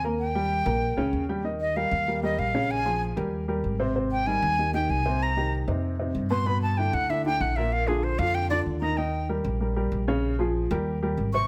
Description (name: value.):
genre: jazz.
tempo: 191 BPM.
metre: 4/4.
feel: straight.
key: Eb major.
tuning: A4 = 440 Hz.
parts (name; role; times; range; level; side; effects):
breathy bright jazz flute; melody; 0.0-9.3, 11.3-11.5 s; Ab4 to Db6; -29 LUFS; equal; plate reverb.
warm upright piano; accompaniment; 0.0-11.5 s; Bb2 to Bb5; -31 LUFS; equal; none.
upright bass; bass; 0.0-11.5 s; Ab1 to G2; -31 LUFS; equal; none.
room: moderate large studio reverb, RT60 1.0 s.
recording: none.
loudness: -26 LUFS.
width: mono.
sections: 0.0-1.4 A section; 1.4-11.5 B section.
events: flute solo 1.4-11.5.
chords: 0.2 Eb7; 2.7 Bbm7; 3.3 Eb6; 4.0 Abmaj7; 5.2 Cm7; 5.8 Fsus2; 6.5 G6; 7.7 Bb; 9.0 Eb; 10.2 Bbm7; 10.9 Eb.